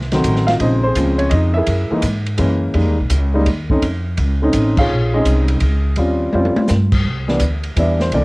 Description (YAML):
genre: jazz piano trio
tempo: 167 BPM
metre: 3/4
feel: swing 65% on 8ths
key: unclear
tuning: A4 = 440 Hz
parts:
  - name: upright bass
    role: bass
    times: 0.0-8.2 s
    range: A1 to Ab2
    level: -17 LUFS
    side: equal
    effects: none
  - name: open jazz drum kit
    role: drums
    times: 0.0-8.2 s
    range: crash cymbal, hi-hat, kick drum, ride cymbal, snare drum, toms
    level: -22 LUFS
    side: equal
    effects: cassette tape
  - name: dark grand piano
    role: melody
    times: 0.1-8.2 s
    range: Db3 to F5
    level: -17 LUFS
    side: equal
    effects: cassette tape
room: little or no reverb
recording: home recording on cassette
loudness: -14 LUFS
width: side -24 dB against mid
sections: 0.0-7.1 A section; 7.1-8.2 B section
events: band accent 4.7; drum fill 6.3-6.7; grand piano solo 7.1-8.2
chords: 0.0 F7b9 (rootless); 0.6 Bbm9; 1.7 Gb9; 2.8 Fm11 (rootless); 3.8 F7b13; 4.9 Bbm11; 6.0 Eb13; 6.7 N.C.; 7.1 Cmaj9